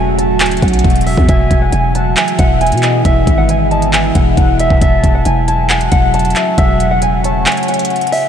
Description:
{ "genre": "hip hop, trap", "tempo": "136 BPM", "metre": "4/4", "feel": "half-time", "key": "unclear", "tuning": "A4 = 436 Hz", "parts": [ { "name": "picked acoustic archtop guitar", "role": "melody", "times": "0.0-8.3 s", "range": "E5 to A5", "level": "-17 LUFS", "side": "equal", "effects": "low-pass filter, diffuse ambient delay" }, { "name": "deep dark ambient pad", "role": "sustained chords", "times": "0.0-8.3 s", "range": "B2 to F#4", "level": "-18 LUFS", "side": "right 1 dB", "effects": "chorus, built-in reverb" }, { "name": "growling 808-style bass", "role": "bass", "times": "0.0-7.5 s", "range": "D#1 to B2", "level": "-15 LUFS", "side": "equal", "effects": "none" }, { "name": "trap drum kit", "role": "drums", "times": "0.2-8.2 s", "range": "handclaps, hi-hat, kick drum", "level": "-15 LUFS", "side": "equal", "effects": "overdrive, vintage 12-bit sampler grit" }, { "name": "warm velvety synth lead", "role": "second line", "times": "1.3-8.3 s", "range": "C#5 to A5", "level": "-20 LUFS", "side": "left 1 dB", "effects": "chorus, diffuse ambient delay" } ], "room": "moderate huge ambient reverb, RT60 8.3 s", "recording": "dreamy mix soaked in reverb", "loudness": "-10 LUFS", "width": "side -8 dB against mid", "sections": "0.0-8.3 A section", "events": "kick muted 7.5-8.3", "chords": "0.0 F#m; 1.3 E; 4.8 F#m/E", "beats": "0.40 0.84 | 1.29 1.73 2.17 2.61 | 3.05 3.49 3.93 4.37 | 4.82 5.26 5.70 6.14 | 6.58 7.02 7.46 7.90" }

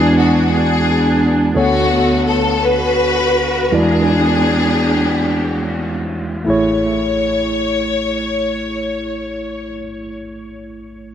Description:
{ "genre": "gospel", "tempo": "36-58 BPM (dotted quarters)", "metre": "6/8", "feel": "straight", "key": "A major", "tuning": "A4 = 441 Hz", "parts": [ { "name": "warm studio string section", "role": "melody", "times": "0.0-9.7 s", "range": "A3 to C#5", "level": "-16 LUFS", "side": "left 1 dB", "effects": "dub echo" }, { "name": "barky tine electric piano", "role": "accompaniment", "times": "0.0-11.1 s", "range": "A1 to D5", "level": "-18 LUFS", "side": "right 1 dB", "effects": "medium stereo tremolo, dub echo" } ], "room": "light reverb", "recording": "echo-heavy mix", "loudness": "-14 LUFS", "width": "side -9 dB against mid", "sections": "0.0-1.5 A section; 1.5-6.5 B section; 6.5-11.1 C section", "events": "slowing down 1.5-6.5", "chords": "0.0 E9; 1.5 Bm9/D; 3.7 E9; 6.5 Amaj7", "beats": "0.52 | 1.54 2.60 | 3.72 4.98 | 6.47 8.11 | 9.76" }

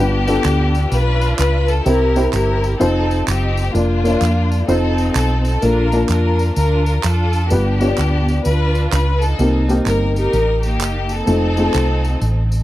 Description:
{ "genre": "uptempo gospel", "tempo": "128 BPM", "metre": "4/4", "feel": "swing 64% on 8ths", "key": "Bb major", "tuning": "A4 = 437 Hz", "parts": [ { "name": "clear studio string section", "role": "melody", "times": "0.0-12.6 s", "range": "Bb3 to B4", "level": "-20 LUFS", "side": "left 1 dB", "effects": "none" }, { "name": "dark upright piano", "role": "accompaniment", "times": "0.0-12.2 s", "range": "G2 to A5", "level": "-19 LUFS", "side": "left 1 dB", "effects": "none" }, { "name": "hollow-body short-scale fingered electric bass", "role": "bass", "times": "0.0-12.6 s", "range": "F1 to F2", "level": "-17 LUFS", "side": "equal", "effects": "none" }, { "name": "tambourine and handclaps", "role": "percussion", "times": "0.3-12.6 s", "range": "none", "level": "-28 LUFS", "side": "right 6 dB", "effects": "none" } ], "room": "small room ambience", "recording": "dry, close 1970s-style studio recording", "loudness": "-14 LUFS", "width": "side -15 dB against mid", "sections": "0.0-12.6 A section", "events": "none", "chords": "0.0 G7; 1.9 C7; 2.8 F7; 3.7 Bb/F; 4.7 F7; 5.6 Bbmaj7; 7.5 G7; 9.4 Cm7; 11.3 F7", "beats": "0.45 0.92 1.39 | 1.86 2.33 2.80 3.28 | 3.75 4.22 4.69 5.16 | 5.63 6.10 6.57 7.04 | 7.51 7.98 8.45 8.92 | 9.39 9.86 10.33 10.80 | 11.27 11.74 12.21" }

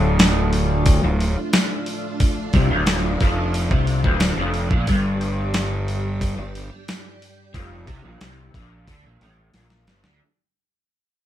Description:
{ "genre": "psychedelic rock", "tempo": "90 BPM", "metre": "4/4", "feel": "straight", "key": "unclear", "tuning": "A4 = 438 Hz", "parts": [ { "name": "string machine, full ensemble", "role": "sustained chords", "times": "0.0-10.2 s", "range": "G3 to G4", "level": "-30 LUFS", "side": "right 1 dB", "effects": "ensemble chorus" }, { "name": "crunchy overdriven guitar", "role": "riff", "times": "0.0-10.2 s", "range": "D2 to D3", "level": "-23 LUFS", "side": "left 1 dB", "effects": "rotary speaker" }, { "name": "fuzz fingered electric bass", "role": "bass", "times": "0.0-10.2 s", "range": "D1 to D2", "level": "-23 LUFS", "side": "equal", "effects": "overdrive" }, { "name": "dusty soul sampler-style drum kit", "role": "drums", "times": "0.2-10.2 s", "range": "hi-hat, kick drum, snare drum", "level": "-20 LUFS", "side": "equal", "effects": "none" } ], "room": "light reverb", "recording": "band playing live in one room", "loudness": "-18 LUFS", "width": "side -12 dB against mid", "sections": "0.0-10.2 A section", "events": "fade-out 0.0-10.2; drum fill 9.5-10.2", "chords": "0.0 Dm; 4.9 G5", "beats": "0.20 0.87 1.54 | 2.21 2.88 3.54 4.21 | 4.88 5.54 6.21 6.88 | 7.54 8.21 8.88 9.54" }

